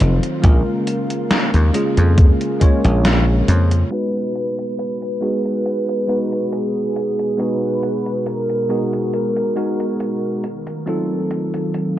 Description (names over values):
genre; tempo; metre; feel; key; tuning
vaporwave; 69 BPM; 4/4; swing 53% on 16ths; G# dorian; A4 = 440 Hz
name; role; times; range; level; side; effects
bell-like tine electric piano; accompaniment; 0.0-12.0 s; Gb3 to C#5; -21 LUFS; equal; analog chorus, analog delay
lush unison pad; sustained chords; 0.0-12.0 s; B2 to F#4; -29 LUFS; right 1 dB; chorus, vintage 12-bit sampler grit
dry thumbed slap bass; bass; 0.0-3.8 s; F1 to E#2; -14 LUFS; equal; none
gated 80s digital drum machine; drums; 0.0-11.9 s; hi-hat, snare drum; -23 LUFS; equal; gated reverb, gated reverb snare, low-pass filter on snare, vintage 12-bit sampler grit, low-pass filter on hats, low-pass filter on room
electronic kick drum; drums; 0.4-2.8 s; none; -11 LUFS; equal; vintage 12-bit sampler grit
warm velvety synth lead; melody; 3.9-10.4 s; G#4 to B4; -23 LUFS; right 1 dB; chorus, tape echo
room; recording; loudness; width
light reverb, digital ambience; dark, warm production, cassette tape, low-pass filter; -16 LUFS; side -13 dB against mid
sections
0.0-3.9 A section; 3.9-12.0 B section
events
filter sweep on drum 3.9-12.0; filter sweep on analog synth pad 3.9-12.0; filter sweep 3.9-12.0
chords
0.4 A#m7; 3.9 G#m9; 10.4 F7b9